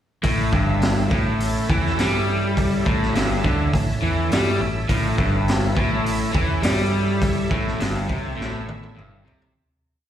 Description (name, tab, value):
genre	blues rock power trio and southern rock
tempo	103 BPM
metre	4/4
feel	straight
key	A mixolydian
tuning	A4 = 440 Hz
part	overdriven tonewheel organ	sustained chords	0.2-9.5 s	C#4 to F5	-30 LUFS	right 2 dB	chorus vibrato, slow rotary speaker
part	crunchy overdriven guitar	riff	0.2-9.5 s	G2 to G3	-23 LUFS	left 1 dB	slapback echo
part	vintage muted fingered electric bass	bass	0.2-9.5 s	G1 to G2	-25 LUFS	equal	none
part	raw garage drum kit	drums	0.2-9.5 s	hi-hat, kick drum, snare drum, toms	-24 LUFS	equal	none
room	light reverb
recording	live gig heard through the venue's PA, recital hall reverb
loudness	-18 LUFS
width	side -10 dB against mid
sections	0.2-9.6 riff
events	fade-out 7.2-9.6; drum fill 8.4-9.6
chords	0.2 A